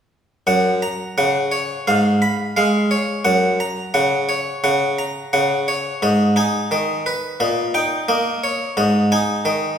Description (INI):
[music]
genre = classical, baroque-style suite movement for harpsichord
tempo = 87 BPM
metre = 4/4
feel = rubato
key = F# major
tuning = A4 = 441 Hz
[part]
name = harpsichord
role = solo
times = 0.5-9.8 s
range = F#2 to B5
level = -16 LUFS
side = equal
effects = none
[sound]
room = wet recital hall reverb, RT60 1.5 s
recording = heard from further back in the room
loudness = -16 LUFS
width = side -8 dB against mid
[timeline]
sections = 0.5-9.8 A section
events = none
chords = 0.5 F#; 1.9 C#7/G#; 3.3 F#; 6.0 G#m; 7.4 D#7/A#; 8.8 G#5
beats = | 0.48 1.18 1.88 2.57 | 3.26 3.95 4.65 5.35 | 6.03 6.72 7.41 8.10 | 8.78 9.46